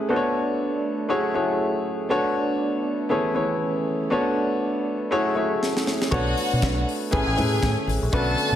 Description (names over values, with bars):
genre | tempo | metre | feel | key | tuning
disco | 120 BPM | 4/4 | swing 56% on 16ths | B dorian | A4 = 435 Hz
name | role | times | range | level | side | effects
warm grand piano | accompaniment | 0.0-8.6 s | A3 to C#5 | -24 LUFS | left 2 dB | none
mellow French horn section | sustained chords | 0.0-8.6 s | D3 to G#4 | -28 LUFS | right 2 dB | none
tight funk drum kit | drums | 5.6-8.5 s | hi-hat, kick drum, snare drum | -27 LUFS | equal | gated reverb
warm studio violin section | second line | 6.1-8.6 s | F#4 to A5 | -27 LUFS | left 1 dB | none
deep dub fingered electric bass | bass | 6.1-8.6 s | A1 to B2 | -25 LUFS | equal | none
congas | percussion | 6.1-8.3 s | none | -34 LUFS | left 2 dB | none
room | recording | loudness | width
moderate echo chamber reverb, RT60 1.2 s, small room ambience | none | -21 LUFS | side -10 dB against mid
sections
0.0-8.6 A section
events
drum fill 5.6-6.1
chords
0.1 Bm9; 1.1 F#m9; 2.1 Bm9; 3.1 Amaj7; 4.1 Bm9; 5.1 F#m9; 6.1 Bm9; 7.1 Amaj7